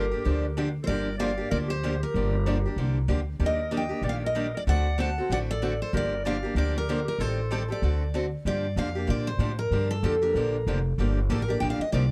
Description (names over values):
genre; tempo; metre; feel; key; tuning
acoustic string swing (jazz manouche); 190 BPM; 4/4; swing 58% on 8ths; G minor; A4 = 441 Hz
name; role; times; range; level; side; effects
picked steel-string acoustic guitar; melody; 0.0-12.1 s; A4 to A5; -33 LUFS; equal; none
breathy clarinet; second line; 0.0-8.1 s; G4 to F#5; -38 LUFS; equal; none
picked steel-string acoustic guitar; accompaniment; 0.0-12.0 s; D3 to A4; -33 LUFS; equal; none
upright bass; bass; 0.0-12.1 s; F1 to Bb2; -30 LUFS; equal; none
room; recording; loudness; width
small room ambience; dry, close 1970s-style studio recording; -27 LUFS; mono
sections
0.0-8.5 A section; 8.5-12.1 A section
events
none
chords
0.0 Gm7; 3.4 Ebmaj7; 4.7 D7; 5.9 Gm7; 7.2 Am7b5; 7.8 D7; 8.5 Gm7